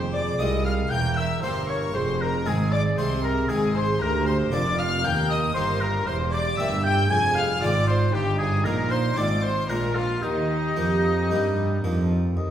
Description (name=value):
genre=classical, baroque-style concerto movement with solo episodes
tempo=116 BPM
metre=4/4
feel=straight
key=Eb major from 4.0 s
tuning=A4 = 442 Hz
part: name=rich chamber violin section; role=second line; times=0.0-12.5 s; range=Eb4 to Ab5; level=-30 LUFS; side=left 2 dB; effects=none
part: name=dark studio viola section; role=accompaniment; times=0.0-12.5 s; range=G3 to Bb4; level=-31 LUFS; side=right 1 dB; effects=none
part: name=harpsichord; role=accompaniment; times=0.0-12.5 s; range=C2 to Ab4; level=-33 LUFS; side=left 1 dB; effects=none
part: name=rich chamber double bass section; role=bass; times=0.0-12.4 s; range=E1 to G2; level=-26 LUFS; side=right 2 dB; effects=none
part: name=warm chamber cello section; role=bass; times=0.0-12.5 s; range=C2 to G3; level=-29 LUFS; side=right 1 dB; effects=none
part: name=warm chamber violin section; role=melody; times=0.1-12.5 s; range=Eb5 to Ab6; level=-31 LUFS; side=left 4 dB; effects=none
part: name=warm oboe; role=melody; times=0.1-12.5 s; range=Eb4 to Ab5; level=-29 LUFS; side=left 1 dB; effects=none
room=wet recital hall reverb, RT60 1.4 s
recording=heard from further back in the room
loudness=-21 LUFS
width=side -10 dB against mid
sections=0.0-12.4 A section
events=none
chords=0.0 Fm; 0.9 C7/E; 2.0 Fm; 4.0 Bb7/D; 5.0 Eb; 6.1 C7/E; 7.1 Fm; 8.1 Eb/G; 9.2 Fm/Ab; 9.7 Bb7; 10.2 Eb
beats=0.40 0.91 1.43 | 1.95 2.47 2.99 3.50 | 4.02 4.53 5.05 5.56 | 6.07 6.59 7.10 7.62 | 8.14 8.65 9.17 9.70 | 10.23 10.77 11.30 11.84 | 12.37